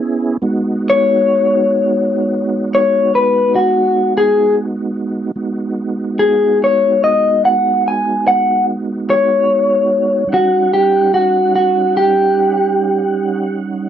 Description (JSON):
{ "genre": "blues", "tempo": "49 BPM (dotted quarters)", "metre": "12/8", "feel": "straight", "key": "G# minor", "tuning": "A4 = 440 Hz", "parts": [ { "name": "mellow tonewheel organ", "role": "sustained chords", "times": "0.0-13.9 s", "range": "G3 to F#5", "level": "-19 LUFS", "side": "right 3 dB", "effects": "slow rotary speaker, chorus vibrato" }, { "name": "electric guitar through a small old amp", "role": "melody", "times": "0.9-13.6 s", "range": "F#4 to G#5", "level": "-12 LUFS", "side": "left 1 dB", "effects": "none" } ], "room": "light reverb", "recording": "dry, close 1970s-style studio recording", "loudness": "-12 LUFS", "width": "side -9 dB against mid", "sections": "0.0-13.9 A section", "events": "none", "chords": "0.4 G#m7; 10.3 D#7#9", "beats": "| 0.42 1.65 2.88 4.12 | 5.35 6.58 7.82 9.05 | 10.28 11.52 12.75" }